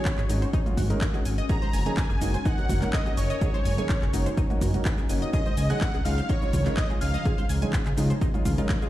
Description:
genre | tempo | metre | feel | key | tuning
progressive house | 125 BPM | 4/4 | straight | unclear | A4 = 441 Hz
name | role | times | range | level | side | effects
soft supersaw | melody | 0.0-7.5 s | Db5 to Bb5 | -34 LUFS | equal | sidechain pumping, ping-pong delay
glassy wavetable pluck | second line | 0.0-7.5 s | Db6 to Bb6 | -42 LUFS | left 1 dB | none
shimmering ambient pad | sustained chords | 0.0-8.9 s | Db3 to Bb4 | -37 LUFS | left 1 dB | chorus, built-in reverb, sidechain pumping
electronic kick drum | drums | 0.1-8.8 s | none | -26 LUFS | equal | studio reverb
house drum kit | drums | 0.1-8.9 s | handclaps, hi-hat, shaker | -36 LUFS | equal | studio reverb
tight sequenced synth | arpeggios | 0.2-8.9 s | Eb4 to Ab5 | -37 LUFS | left 1 dB | chorus, sidechain pumping, ping-pong delay
fat analog bass | bass | 0.2-8.6 s | Gb1 to Db2 | -26 LUFS | equal | sidechain pumping
felt-muted upright piano | stabs | 0.3-8.9 s | Ab3 to Bb4 | -34 LUFS | right 1 dB | sidechain pumping, ping-pong delay
electronic congas and toms | percussion | 0.3-8.7 s | none | -35 LUFS | right 2 dB | overdrive, sidechain pumping on perc, studio reverb, sidechain pumping on toms
room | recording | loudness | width
digital ambience | played on a big sound system in a bare room, stone room reverb | -23 LUFS | side -14 dB against mid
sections
0.0-8.9 A section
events
none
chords
0.0 Ab7sus4; 1.5 Gb6; 5.3 Dbadd9

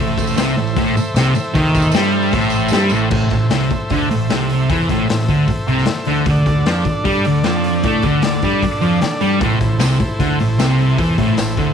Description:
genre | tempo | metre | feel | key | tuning
garage rock duo or trio | 152 BPM | 4/4 | straight | A minor | A4 = 440 Hz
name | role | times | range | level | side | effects
overdriven combo organ | sustained chords | 0.0-11.7 s | D4 to E5 | -24 LUFS | right 1 dB | none
fuzz guitar | riff | 0.0-11.7 s | A2 to A3 | -16 LUFS | equal | distortion
growling picked electric bass | bass | 0.0-11.7 s | A1 to A2 | -24 LUFS | right 1 dB | overdrive
tambourine | percussion | 0.1-3.0, 9.8-11.5 s | none | -32 LUFS | right 14 dB | none
raw garage drum kit | drums | 0.2-11.7 s | crash cymbal, hi-hat, kick drum, snare drum | -21 LUFS | left 3 dB | none
room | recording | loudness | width
light reverb, small room ambience | 1960s-style stereo | -14 LUFS | side -7 dB against mid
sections
0.0-3.1 A section; 3.1-11.7 B section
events
none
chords
0.0 Am; 6.3 D5; 9.4 Am

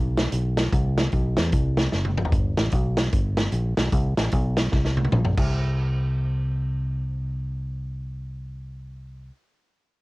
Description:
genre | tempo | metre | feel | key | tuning
uptempo gospel | 150 BPM | 4/4 | swing 62% on 8ths | unclear | A4 = 443 Hz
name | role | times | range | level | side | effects
fingered electric bass | bass | 0.0-9.3 s | F#1 to E2 | -24 LUFS | equal | none
natural country drum kit | drums | 0.2-5.4 s | crash cymbal, hi-hat, kick drum, snare drum, toms | -23 LUFS | equal | cassette tape
room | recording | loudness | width
little or no reverb | home recording on cassette | -21 LUFS | side -22 dB against mid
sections
0.0-2.3 A section; 2.3-5.5 B section; 5.5-8.7 C section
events
drum fill 1.9-2.3, 4.7-5.5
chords
none

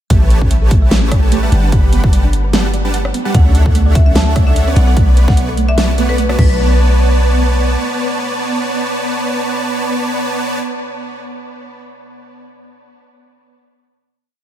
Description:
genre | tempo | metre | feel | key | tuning
future bass | 148 BPM | 4/4 | swing 55% on 16ths, half-time | B minor | A4 = 440 Hz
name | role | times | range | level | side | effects
thumb-piano-like synth pluck | arpeggios | 0.1-6.8 s | A3 to F#5 | -24 LUFS | right 4 dB | chorus, sidechain pumping, diffuse ambient delay
supersaw chords | riff | 0.1-10.6 s | G3 to C#6 | -19 LUFS | right 1 dB | analog chorus, sidechain pumping, diffuse ambient delay
warm 808-style bass | bass | 0.1-7.8 s | G1 to D2 | -13 LUFS | equal | sidechain pumping
dubstep drum kit | drums | 0.1-6.5 s | crash cymbal, hi-hat, rim click, snare drum | -21 LUFS | equal | none
electronic kick drum | drums | 0.1-6.5 s | none | -12 LUFS | equal | none
marimba with hard mallets | melody | 3.3-6.6 s | B4 to A5 | -24 LUFS | left 2 dB | sidechain pumping, tape echo
room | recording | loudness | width
light reverb | none | -11 LUFS | side -11 dB against mid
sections
0.1-6.6 drop; 6.6-9.8 final note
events
drop 0.1-6.6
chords
0.1 A7; 1.5 Gmaj7; 3.3 Dmaj7; 4.8 Bm7

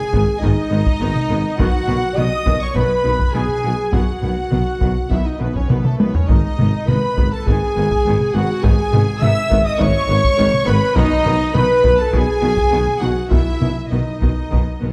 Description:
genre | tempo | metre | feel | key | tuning
cinematic, epic orchestral film score | 102 BPM | 4/4 | straight | unclear | A4 = 439 Hz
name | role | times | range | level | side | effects
clear symphonic violin section | melody | 0.0-14.9 s | A4 to E6 | -32 LUFS | equal | none
warm symphonic violin section | second line | 0.0-14.9 s | A4 to E6 | -31 LUFS | equal | none
mellow French horn section | sustained chords | 0.0-14.9 s | A3 to E5 | -23 LUFS | equal | none
dark trumpet section | stabs | 0.0-14.9 s | A3 to E5 | -29 LUFS | equal | none
warm symphonic viola section | accompaniment | 0.1-14.9 s | D#3 to B3 | -31 LUFS | equal | none
mellow tuba | bass | 0.1-14.9 s | G#1 to B1 | -27 LUFS | equal | none
rich symphonic cello section | bass | 0.1-14.9 s | G#2 to B2 | -26 LUFS | equal | none
rich symphonic double bass section | bass | 0.1-14.9 s | G#1 to B1 | -27 LUFS | equal | none
taiko ensemble | drums | 0.1-14.9 s | none | -22 LUFS | equal | none
room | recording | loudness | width
moderate scoring stage reverb, RT60 1.8 s | dark, warm production | -17 LUFS | mono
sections
0.0-14.9 A section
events
drum fill 5.7-6.3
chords
0.0 G#m; 1.6 B; 6.3 G#m; 11.0 B

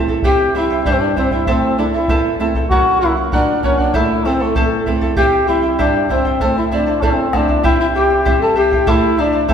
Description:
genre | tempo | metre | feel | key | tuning
andean folk, Andean ensemble | 97 BPM | 2/4 | straight | A dorian | A4 = 445 Hz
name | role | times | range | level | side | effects
charango | accompaniment | 0.0-9.5 s | E4 to A5 | -21 LUFS | equal | none
flamenco guitar | accompaniment | 0.0-9.5 s | E2 to E4 | -22 LUFS | right 2 dB | none
bombo | percussion | 0.1-9.5 s | none | -20 LUFS | equal | none
mellow duduk | melody | 0.2-9.5 s | A3 to A4 | -17 LUFS | left 2 dB | none
mellow hollow pan flute | second line | 0.3-9.5 s | A4 to A5 | -22 LUFS | right 3 dB | none
room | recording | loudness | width
wet recital hall reverb, RT60 1.8 s | recorded in a church or concert hall | -13 LUFS | side -8 dB against mid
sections
0.0-7.6 A section; 7.6-9.5 B section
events
none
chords
0.2 C; 1.5 Am; 2.7 F#; 3.9 Am; 5.2 C; 6.4 Am; 7.6 C; 8.9 Am

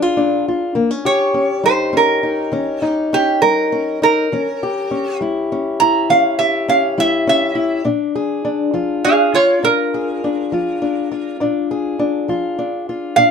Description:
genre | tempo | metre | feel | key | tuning
acoustic country blues, solo or duo | 68 BPM (dotted quarters) | 12/8 | straight | unclear | A4 = 440 Hz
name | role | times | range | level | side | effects
fingerpicked old ladder-braced acoustic guitar | accompaniment | 0.0-13.3 s | Bb2 to Ab4 | -18 LUFS | left 3 dB | none
lap resonator guitar | melody | 1.1-13.3 s | F4 to Bb5 | -15 LUFS | right 3 dB | none
room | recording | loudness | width
moderate studio reverb, RT60 0.6 s | dark, warm production | -15 LUFS | side -6 dB against mid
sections
0.0-13.3 A section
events
none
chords
0.0 Bb7 (rootless); 0.8 Eb7; 4.3 Edim7; 7.9 Bb7

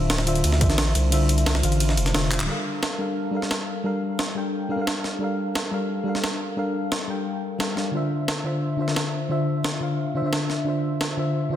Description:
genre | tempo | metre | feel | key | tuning
liquid drum and bass | 176 BPM | 4/4 | straight | unclear | A4 = 440 Hz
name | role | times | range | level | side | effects
mellow FM electric piano | accompaniment | 0.0-11.6 s | D3 to G5 | -25 LUFS | left 1 dB | chorus, digital delay
saturated sub bass | bass | 0.0-2.5 s | D1 to D2 | -22 LUFS | equal | none
breakbeat sampler-style drum kit | drums | 0.1-11.1 s | handclaps, hi-hat, ride cymbal, snare drum | -27 LUFS | right 1 dB | none
electronic kick drum | drums | 0.6-0.7 s | none | -20 LUFS | equal | overdrive
room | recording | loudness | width
moderate lush hall reverb, RT60 1.9 s | dense, heavily limited modern master | -22 LUFS | side -11 dB against mid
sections
0.0-2.5 A section; 2.5-11.6 B section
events
drop 0.0-2.5; kick drops out 1.1-2.5; drum fill 2.3; band accent 2.4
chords
0.0 Dm9; 2.5 Gm9; 7.9 Dm9

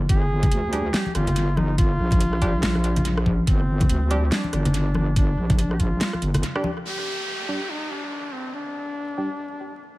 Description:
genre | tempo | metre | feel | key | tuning
deep dubstep | 142 BPM | 4/4 | swing 59% on 16ths, half-time | G phrygian | A4 = 436 Hz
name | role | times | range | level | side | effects
wobble bass | bass | 0.0-6.4 s | G1 to D2 | -22 LUFS | equal | chorus
clear duduk | melody | 0.1-10.0 s | C4 to Ab4 | -30 LUFS | equal | dub echo
dubstep drum kit | drums | 0.1-6.6 s | hi-hat, rim click, snare drum | -28 LUFS | equal | tape echo
electronic kick drum | drums | 0.1-5.9 s | none | -21 LUFS | equal | none
congas | percussion | 0.4-6.7 s | none | -28 LUFS | left 1 dB | none
filtered dub chord stab | stabs | 0.7-9.3 s | G3 to G4 | -32 LUFS | right 1 dB | chorus, tape echo
downlifter | sound effects | 6.9-10.0 s | none | -32 LUFS | equal | none
room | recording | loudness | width
little or no reverb | echo-heavy mix, vinyl crackle | -20 LUFS | side -18 dB against mid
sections
0.0-6.9 A section; 6.9-10.0 B section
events
drop 0.0-6.9; break 6.4-6.9; band accent 6.5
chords
0.0 G5

